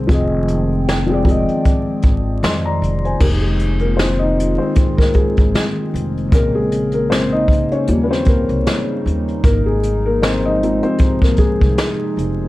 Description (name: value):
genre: lo-fi hip hop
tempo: 77 BPM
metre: 4/4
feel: swing 57% on 16ths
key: F minor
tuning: A4 = 440 Hz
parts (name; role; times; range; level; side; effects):
- felt-muted upright piano; accompaniment; 0.0-12.5 s; Db3 to C6; -19 LUFS; left 2 dB; cassette tape, low-pass filter
- dark analog pad; sustained chords; 0.0-12.5 s; C3 to G5; -23 LUFS; equal; chorus, phaser, low-pass filter
- upright bass; bass; 0.0-12.5 s; F1 to F2; -20 LUFS; equal; none
- vintage brush drum kit; drums; 0.1-12.4 s; crash cymbal, hi-hat, kick drum, snare drum; -16 LUFS; equal; none
room: light reverb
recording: vinyl crackle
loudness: -14 LUFS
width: side -17 dB against mid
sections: 0.0-3.2 A section; 3.2-12.5 A section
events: felt piano solo 3.2-12.5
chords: 0.0 Fm7; 6.3 Bbm9; 7.9 Eb7; 9.4 Ab6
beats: | 0.09 0.87 1.65 2.42 | 3.21 3.98 4.76 5.54 | 6.32 7.10 7.88 8.66 | 9.44 10.22 11.00 11.78